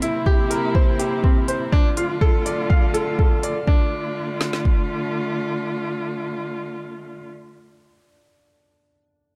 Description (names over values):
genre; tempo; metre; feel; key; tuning
piano and strings electronica; 123 BPM; 4/4; straight; D minor; A4 = 440 Hz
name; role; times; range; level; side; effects
rich string quartet; sustained chords; 0.0-7.3 s; C3 to F4; -29 LUFS; equal; sidechain pumping
bright baby grand piano; riff; 0.0-9.4 s; C4 to F5; -26 LUFS; equal; delay
electronic hi-hat; drums; 0.0-3.5 s; none; -34 LUFS; equal; none
deep house drum kit; drums; 0.3-4.8 s; kick drum, snare drum; -20 LUFS; equal; none
room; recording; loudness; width
light reverb, small room ambience; none; -21 LUFS; mono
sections
0.0-3.7 A section; 3.7-7.6 B section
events
none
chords
0.0 C7; 1.7 Dm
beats
0.26 0.75 1.24 | 1.73 2.21 2.70 3.19 | 3.68 4.17 4.65 5.14 | 5.63 6.12 6.61 7.09